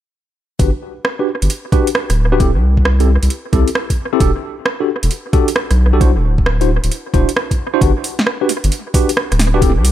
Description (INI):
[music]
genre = UK garage, two-step garage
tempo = 133 BPM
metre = 4/4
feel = swing 66% on 16ths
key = G major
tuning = A4 = 441 Hz
[part]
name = bright tine electric piano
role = stabs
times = 0.6-9.7 s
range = C4 to C5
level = -19 LUFS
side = left 1 dB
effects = medium stereo tremolo, dub echo
[part]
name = saturated sub bass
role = bass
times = 0.6-9.9 s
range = D1 to C2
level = -14 LUFS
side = equal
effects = none
[part]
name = electronic kick drum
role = drums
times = 0.6-9.7 s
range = none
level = -15 LUFS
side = equal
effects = overdrive, studio reverb
[part]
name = garage drum kit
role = drums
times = 0.6-9.9 s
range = hi-hat, rim click, snare drum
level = -20 LUFS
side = right 2 dB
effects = overdrive, studio reverb, analog delay
[sound]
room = light reverb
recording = echo-heavy mix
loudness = -13 LUFS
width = side -12 dB against mid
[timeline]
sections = 0.6-9.9 A section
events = none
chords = 0.6 Gmaj7; 2.4 C6; 4.2 Em11; 6.0 D9; 7.8 Gmaj7